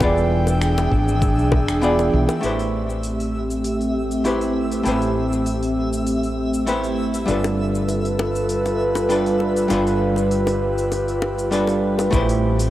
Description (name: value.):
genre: sunset chillout.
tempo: 99 BPM.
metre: 4/4.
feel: swing 54% on 16ths.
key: A minor.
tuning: A4 = 440 Hz.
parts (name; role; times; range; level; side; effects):
archtop guitar, miked and amplified; accompaniment; 0.0-12.7 s; E3 to D5; -22 LUFS; right 1 dB; auto-pan, cassette tape, tape echo.
airy breathy pad; sustained chords; 0.0-12.7 s; G3 to G5; -22 LUFS; equal; chorus, cassette tape.
mellow fretless electric bass; bass; 0.0-12.7 s; E1 to B1; -24 LUFS; equal; ensemble chorus.
deep house drum kit; drums; 0.0-12.7 s; cabasa, finger snaps, hi-hat; -35 LUFS; left 1 dB; studio reverb, cassette tape.
electronic kick drum; drums; 0.0-1.7, 12.1-12.3 s; none; -22 LUFS; equal; overdrive, studio reverb, cassette tape.
bongos; percussion; 0.0-2.4, 7.4-12.1 s; none; -27 LUFS; left 3 dB; none.
twinkling granular texture; texture; 0.0-12.1 s; E5; -35 LUFS; right 1 dB; built-in reverb, cassette tape.
room: light reverb.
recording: home recording on cassette.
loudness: -18 LUFS.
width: side -14 dB against mid.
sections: 0.0-2.4 A section; 2.4-12.1 B section.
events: kick drops out 1.8-2.4; filter sweep on analog synth pad 2.4-12.1.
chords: 0.0 E7b9; 2.4 Am7; 7.3 G9; 12.1 Am7.